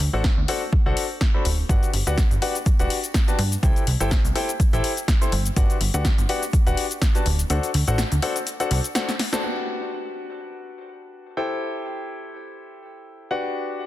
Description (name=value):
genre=piano house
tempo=124 BPM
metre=4/4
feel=swing 55% on 16ths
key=G major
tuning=A4 = 440 Hz
part: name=plucky analog bass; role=bass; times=0.0-8.8 s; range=D1 to G2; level=-23 LUFS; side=equal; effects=tube saturation, sidechain pumping
part: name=punchy analog drum machine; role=drums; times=0.0-9.4 s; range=hi-hat, shaker, snare drum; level=-28 LUFS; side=left 2 dB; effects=overdrive
part: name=bright concert grand piano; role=riff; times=0.1-13.9 s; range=D4 to C6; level=-27 LUFS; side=left 2 dB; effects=sidechain pumping, tape echo
part: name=electronic kick drum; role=drums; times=0.2-7.1 s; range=none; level=-20 LUFS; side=equal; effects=overdrive
room=digital ambience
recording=dense, heavily limited modern master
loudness=-20 LUFS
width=side -14 dB against mid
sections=0.0-9.4 A section; 9.4-13.9 B section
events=kick drops out 7.5-9.4; drum fill 9.1-9.4; band accent 9.3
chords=0.0 D7; 1.7 Gmaj7; 3.6 C6; 5.6 Gmaj7; 7.3 D7; 9.4 Gmaj7; 11.4 C6; 13.3 Gmaj7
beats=0.24 0.73 1.21 | 1.69 2.18 2.66 3.15 | 3.63 4.11 4.60 5.08 | 5.57 6.05 6.53 7.02 | 7.50 7.99 8.47 8.95 | 9.44 9.92 10.40 10.89 | 11.37 11.86 12.34 12.82 | 13.31 13.79